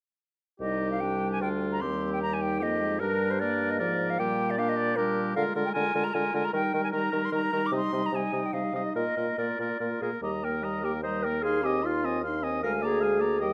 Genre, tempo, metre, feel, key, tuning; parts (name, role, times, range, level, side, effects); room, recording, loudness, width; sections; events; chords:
quick classical-period movement for wind quintet; 150 BPM; 3/4; rubato; C minor, Eb major from 5.4 s; A4 = 440 Hz
silver concert flute; melody; 0.6-13.5 s; Bb4 to D6; -34 LUFS; equal
clear oboe; second line; 0.6-13.5 s; F4 to F5; -36 LUFS; equal
clear clarinet; accompaniment; 0.6-13.5 s; Bb3 to C5; -35 LUFS; equal
dark French horn; accompaniment; 0.6-13.5 s; F3 to Eb4; -37 LUFS; equal
warm bassoon; bass; 0.6-13.5 s; C2 to Eb3; -34 LUFS; equal
moderate recital hall reverb, RT60 1.4 s; close, detailed microphones; -28 LUFS; mono
0.6-10.2 A section; 10.2-13.5 B section
0.6 Cm; 1.8 Cm/Eb; 3.0 Gm; 4.2 Gm/Bb; 5.4 Bb7/D; 6.5 Eb; 7.7 Cm; 9.0 Bb; 10.2 Eb; 11.4 Fm7/Eb; 12.6 Bb7/D